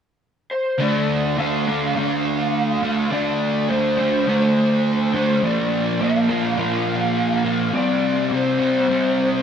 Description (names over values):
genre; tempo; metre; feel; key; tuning
rock; 104 BPM; 4/4; straight; D minor; A4 = 440 Hz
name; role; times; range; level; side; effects
lead guitar through a small cranked amp; melody; 0.5-9.4 s; C5 to F5; -23 LUFS; left 1 dB; overdrive, slapback echo
fuzz guitar; riff; 0.8-9.4 s; Bb2 to D4; -19 LUFS; right 1 dB; distortion, analog chorus
room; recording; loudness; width
moderate huge ambient reverb, RT60 6.3 s; none; -18 LUFS; side -8 dB against mid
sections
0.8-9.4 A section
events
none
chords
0.0 N.C.; 0.8 Dm7; 5.4 Bb; 7.7 C5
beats
0.22 | 0.80 1.38 1.96 2.53 | 3.11 3.69 4.27 4.85 | 5.43 6.01 6.59 7.17 | 7.74 8.32 8.90